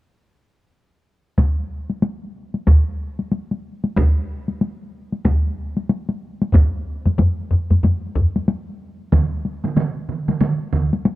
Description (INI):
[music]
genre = japanese traditional, taiko drum ensemble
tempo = 93 BPM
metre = 4/4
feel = swing 60% on 16ths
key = none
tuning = none
[part]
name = solo taiko drums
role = percussion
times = 1.4-11.2 s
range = none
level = -22 LUFS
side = left 2 dB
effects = none
[part]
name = taiko ensemble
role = percussion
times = 1.4-10.9 s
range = none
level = -17 LUFS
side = equal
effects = none
[part]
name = taiko ensemble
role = percussion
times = 6.5-8.3 s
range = none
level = -17 LUFS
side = equal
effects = none
[part]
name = taiko ensemble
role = percussion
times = 9.1-10.9 s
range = none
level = -21 LUFS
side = right 5 dB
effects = none
[sound]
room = light reverb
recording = dry, close 1970s-style studio recording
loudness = -18 LUFS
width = side -17 dB against mid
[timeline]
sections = 1.4-6.5 A section; 6.5-11.2 B section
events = none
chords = none